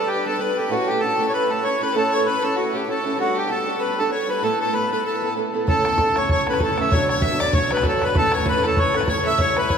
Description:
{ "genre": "celtic folk, Celtic reel", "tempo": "193 BPM", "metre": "4/4", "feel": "swing 57% on 8ths", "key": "A mixolydian", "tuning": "A4 = 440 Hz", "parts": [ { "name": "accordion", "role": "melody", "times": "0.0-9.8 s", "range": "F#4 to E5", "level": "-21 LUFS", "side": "equal", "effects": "none" }, { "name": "clear fiddle", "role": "second line", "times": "0.0-9.8 s", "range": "F#4 to E5", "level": "-27 LUFS", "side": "left 4 dB", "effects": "none" }, { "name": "picked steel-string acoustic guitar", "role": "accompaniment", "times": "0.0-9.8 s", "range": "A2 to C#5", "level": "-24 LUFS", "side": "right 3 dB", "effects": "none" }, { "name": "bodhran", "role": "percussion", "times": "5.7-9.8 s", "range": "none", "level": "-23 LUFS", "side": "equal", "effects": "none" } ], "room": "wet cathedral reverb, RT60 4.9 s", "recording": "recorded in a church or concert hall", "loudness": "-18 LUFS", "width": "side -7 dB against mid", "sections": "0.0-5.7 A section; 5.7-9.8 B section", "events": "none", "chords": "0.0 Gadd9; 0.7 A; 3.2 Gadd9; 4.4 Asus2; 5.7 A; 6.9 Bmadd9; 8.1 A" }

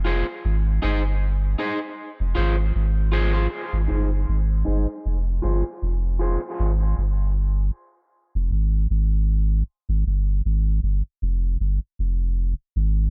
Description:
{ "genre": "dub reggae", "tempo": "78 BPM", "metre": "4/4", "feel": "swing 55% on 16ths", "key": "unclear", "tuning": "A4 = 440 Hz", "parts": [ { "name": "electric guitar at the edge of break-up", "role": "accompaniment", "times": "0.0-6.4 s", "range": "Eb4 to C5", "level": "-31 LUFS", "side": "equal", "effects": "low-pass filter, dub echo" }, { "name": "warm sub bass", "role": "bass", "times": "0.0-13.1 s", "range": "F1 to Ab1", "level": "-23 LUFS", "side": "equal", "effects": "none" } ], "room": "digital ambience", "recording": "echo-heavy mix", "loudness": "-23 LUFS", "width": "mono", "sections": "0.0-3.5 A section; 3.5-13.1 B section", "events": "none", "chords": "0.4 Ab; 2.0 Fm; 3.5 Ab; 5.0 Fm; 6.6 N.C.; 11.2 Fsus2" }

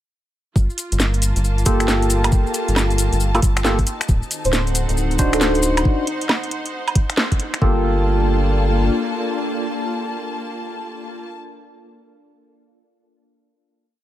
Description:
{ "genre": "UK garage, two-step garage", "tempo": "136 BPM", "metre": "4/4", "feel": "swing 64% on 16ths", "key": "G minor", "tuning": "A4 = 438 Hz", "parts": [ { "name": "rubbery square bass", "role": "bass", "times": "0.6-8.9 s", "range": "D1 to G1", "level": "-19 LUFS", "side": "equal", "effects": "none" }, { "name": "electronic kick drum", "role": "drums", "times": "0.6-7.7 s", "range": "none", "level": "-18 LUFS", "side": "equal", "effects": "none" }, { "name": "maracas", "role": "percussion", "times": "0.6-5.8 s", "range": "none", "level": "-28 LUFS", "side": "left 4 dB", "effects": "none" }, { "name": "clear symphonic string section", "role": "texture", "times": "0.6-11.4 s", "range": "Bb3 to A5", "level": "-28 LUFS", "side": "equal", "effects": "sidechain pumping" }, { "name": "garage drum kit", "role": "drums", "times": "0.8-7.6 s", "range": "finger snaps, hi-hat, snare drum, woodblock", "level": "-22 LUFS", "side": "right 1 dB", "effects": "none" }, { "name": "percussive organ stab", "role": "stabs", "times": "1.7-11.2 s", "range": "Bb3 to C5", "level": "-23 LUFS", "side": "equal", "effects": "analog chorus, cassette tape, digital delay" }, { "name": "soft string machine", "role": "sustained chords", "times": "4.3-11.2 s", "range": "Eb3 to A4", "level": "-28 LUFS", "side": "left 2 dB", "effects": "ensemble chorus, sidechain pumping" }, { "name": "airy dreamy lead", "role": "melody", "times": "4.5-5.5 s", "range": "A4 to C5", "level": "-26 LUFS", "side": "right 1 dB", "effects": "chorus, digital delay" } ], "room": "digital ambience", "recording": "none", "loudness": "-17 LUFS", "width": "side -13 dB against mid", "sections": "0.6-7.6 drop; 7.6-11.1 final chord", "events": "drop 0.6-7.6; band accent 7.2", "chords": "0.6 Gm9; 3.9 D7b9; 7.6 Gm9" }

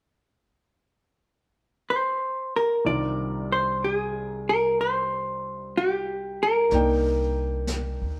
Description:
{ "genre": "jazz ballad", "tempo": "62 BPM", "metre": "4/4", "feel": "swing 68% on 8ths", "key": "C minor", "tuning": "A4 = 441 Hz", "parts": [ { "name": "vintage hollow-body jazz guitar", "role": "melody", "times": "1.9-8.2 s", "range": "G4 to D5", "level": "-27 LUFS", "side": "equal", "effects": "none" }, { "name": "clear baby grand piano", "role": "accompaniment", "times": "2.8-8.2 s", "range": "C2 to G5", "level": "-33 LUFS", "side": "equal", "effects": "none" }, { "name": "upright bass", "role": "bass", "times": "6.7-8.2 s", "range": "C2 to D2", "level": "-29 LUFS", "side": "equal", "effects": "none" }, { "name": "jazz brush drum kit", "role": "drums", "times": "6.7-8.2 s", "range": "brushed snare drum, hi-hat, snare drum", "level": "-39 LUFS", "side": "equal", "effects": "none" } ], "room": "moderate large studio reverb, RT60 1.2 s", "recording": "band playing live in one room", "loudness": "-25 LUFS", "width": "mono", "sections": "0.0-2.8 A section; 2.8-6.7 B section; 6.7-8.2 C section", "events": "none", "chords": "0.0 N.C.; 2.8 Cm11; 6.7 Cm9" }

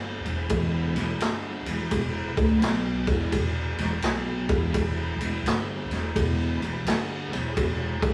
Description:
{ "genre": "blues rock power trio and southern rock", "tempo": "85 BPM", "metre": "4/4", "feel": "swing 65% on 8ths", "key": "E mixolydian", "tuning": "A4 = 440 Hz", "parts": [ { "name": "thick fuzz guitar", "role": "riff", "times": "0.0-8.1 s", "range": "E2 to D4", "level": "-31 LUFS", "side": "equal", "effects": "distortion" }, { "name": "upright bass", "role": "bass", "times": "0.0-8.1 s", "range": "E1 to D2", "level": "-34 LUFS", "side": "equal", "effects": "none" }, { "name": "bright tonewheel organ", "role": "sustained chords", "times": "0.3-8.1 s", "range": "B3 to D5", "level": "-42 LUFS", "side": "equal", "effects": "overdrive, chorus vibrato, fast rotary speaker" }, { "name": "vintage drum kit", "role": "drums", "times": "0.3-8.1 s", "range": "kick drum, ride cymbal, snare drum", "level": "-30 LUFS", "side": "equal", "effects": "none" } ], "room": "moderate studio reverb, RT60 0.6 s", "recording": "rough rehearsal-room recording, small room ambience", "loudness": "-27 LUFS", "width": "mono", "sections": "0.0-8.1 A section", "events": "none", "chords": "0.0 E" }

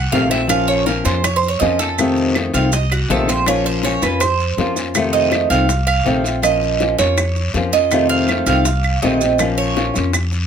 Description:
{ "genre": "latin, Cuban son and guajira", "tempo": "162 BPM", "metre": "4/4", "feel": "straight", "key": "Bb harmonic minor", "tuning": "A4 = 440 Hz", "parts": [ { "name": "Cuban tres", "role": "arpeggios", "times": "0.0-10.1 s", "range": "Gb4 to Gb5", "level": "-18 LUFS", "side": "right 7 dB", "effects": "none" }, { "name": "upright bass", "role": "bass", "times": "0.0-10.5 s", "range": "Bb1 to F2", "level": "-21 LUFS", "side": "equal", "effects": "none" }, { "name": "nylon-string guitar", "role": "accompaniment", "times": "0.1-10.2 s", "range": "C3 to F4", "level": "-19 LUFS", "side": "left 4 dB", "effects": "none" }, { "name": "bongos", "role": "percussion", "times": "0.1-10.5 s", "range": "none", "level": "-27 LUFS", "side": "left 8 dB", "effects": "none" }, { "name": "guiro", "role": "percussion", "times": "0.1-10.5 s", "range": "none", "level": "-29 LUFS", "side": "left 4 dB", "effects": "none" }, { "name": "claves", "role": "percussion", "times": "0.5-10.3 s", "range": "none", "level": "-24 LUFS", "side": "right 4 dB", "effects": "none" }, { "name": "maracas", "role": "percussion", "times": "0.5-10.5 s", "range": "none", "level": "-28 LUFS", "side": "right 7 dB", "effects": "none" } ], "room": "moderate studio ambience, RT60 0.5 s", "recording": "none", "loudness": "-14 LUFS", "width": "side -8 dB against mid", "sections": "0.0-10.5 A section", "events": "Cuban tres solo 0.0-10.5", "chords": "0.0 F7; 0.5 Bbm; 2.0 F7; 3.5 Bbm; 5.0 F7; 6.4 Bbm; 7.9 F7; 9.4 Bbm" }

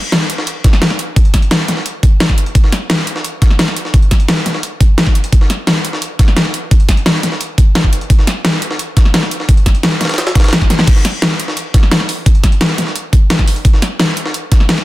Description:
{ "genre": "drum and bass", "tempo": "173 BPM", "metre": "4/4", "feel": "straight", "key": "none", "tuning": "none", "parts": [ { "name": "breakbeat sampler-style drum kit", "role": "drums", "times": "0.1-14.8 s", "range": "hi-hat, snare drum", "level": "-22 LUFS", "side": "equal", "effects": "high-pass filter on snare, high-pass filter on hats, high-pass filter on room" }, { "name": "dubstep drum kit", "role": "drums", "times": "0.1-14.8 s", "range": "crash cymbal, hi-hat, snare drum", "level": "-15 LUFS", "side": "equal", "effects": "overdrive" }, { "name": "electronic kick drum", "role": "drums", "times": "0.6-14.6 s", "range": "none", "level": "-9 LUFS", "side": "equal", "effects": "overdrive" } ], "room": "little or no reverb", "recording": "dense, heavily limited modern master", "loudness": "-10 LUFS", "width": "side -17 dB against mid", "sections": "0.0-14.8 A section", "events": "drum fill 10.7", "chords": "none" }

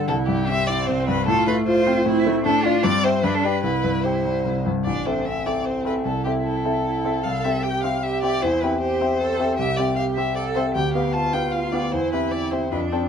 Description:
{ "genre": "quick classical-period movement for piano trio", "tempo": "152 BPM", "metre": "3/4", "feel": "straight", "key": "C major, A minor from 4.9 s, C major from 9.6 s", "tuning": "A4 = 439 Hz", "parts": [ { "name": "rich cello", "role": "second line", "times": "0.0-13.1 s", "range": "C4 to A4", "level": "-26 LUFS", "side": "right 8 dB", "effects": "none" }, { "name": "clear concert grand piano", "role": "accompaniment", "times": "0.0-13.1 s", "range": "A1 to F5", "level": "-22 LUFS", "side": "left 2 dB", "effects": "none" }, { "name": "rich violin", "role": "melody", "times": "0.1-13.0 s", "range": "F4 to A5", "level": "-25 LUFS", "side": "left 2 dB", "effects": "none" } ], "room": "light reverb", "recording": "close, detailed microphones", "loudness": "-19 LUFS", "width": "side -7 dB against mid", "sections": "0.0-4.9 A section; 4.9-13.1 B section", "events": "none", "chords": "0.1 C; 1.3 F/A; 2.4 Dm/A; 2.8 C/G; 3.2 G; 3.6 C; 4.9 Am; 6.1 Am/C; 7.2 C; 8.4 C/E; 9.6 C; 10.8 G7/D; 11.9 C/E" }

